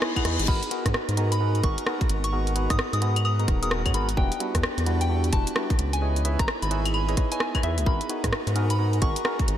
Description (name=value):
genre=UK garage, two-step garage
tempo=130 BPM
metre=4/4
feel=swing 63% on 16ths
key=G# minor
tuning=A4 = 441 Hz
part: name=airy breathy pad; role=sustained chords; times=0.0-9.6 s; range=B3 to A#4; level=-34 LUFS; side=right 2 dB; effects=chorus, sidechain pumping
part: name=percussive organ stab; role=stabs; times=0.0-9.4 s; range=G3 to F#5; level=-31 LUFS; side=equal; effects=chorus, tape echo
part: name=garage drum kit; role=drums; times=0.0-9.6 s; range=claves, crash cymbal, hi-hat, rim click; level=-30 LUFS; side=equal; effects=none
part: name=reverse cymbal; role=sound effects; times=0.0-0.5 s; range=none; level=-32 LUFS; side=left 5 dB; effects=none
part: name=rubbery square bass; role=bass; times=0.2-9.6 s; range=D#1 to G#2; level=-25 LUFS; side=equal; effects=tube saturation, sidechain pumping
part: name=electronic kick drum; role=drums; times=0.2-9.5 s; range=none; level=-25 LUFS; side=equal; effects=none
part: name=soft synth bell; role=melody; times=0.5-9.2 s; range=E5 to D#6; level=-32 LUFS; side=left 1 dB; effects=chorus, analog delay
room=moderate lush hall reverb, RT60 2.0 s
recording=dreamy mix soaked in reverb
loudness=-22 LUFS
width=side -11 dB against mid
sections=0.0-9.6 A section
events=reverse cymbal 0.0-0.5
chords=0.5 G#m7; 4.2 Em7; 6.0 C#m7; 7.9 G#m7